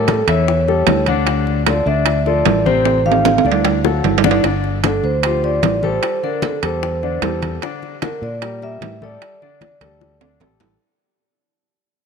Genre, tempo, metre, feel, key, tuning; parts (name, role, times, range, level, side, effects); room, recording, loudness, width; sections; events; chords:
Afro-Cuban jazz; 151 BPM; 4/4; straight; A4 = 436 Hz
warm concert grand piano; accompaniment; 0.0-10.7 s; C3 to E5; -21 LUFS; left 11 dB
fingered electric bass; bass; 0.0-10.8 s; G1 to Bb2; -21 LUFS; right 1 dB
vibraphone with soft mallets; melody; 0.1-10.4 s; A4 to F5; -21 LUFS; right 2 dB; slapback echo
bongos; percussion; 0.1-10.7 s; -24 LUFS; left 13 dB
congas; percussion; 0.1-10.7 s; -25 LUFS; left 1 dB
timbales; percussion; 0.1-10.7 s; -20 LUFS; right 15 dB
moderate plate reverb, RT60 3.5 s; 1960s-style stereo with parts hard left and right; -14 LUFS; side -6 dB against mid
0.0-4.4 A section; 4.4-10.8 B section
drum fill 2.9-4.4, 9.6-10.8; fade-out 4.4-10.8
0.0 A7; 1.3 Dm7; 2.9 Am7b5; 3.6 D; 4.4 G5; 6.0 A7sus4; 7.6 Em7b5; 9.2 A7sus4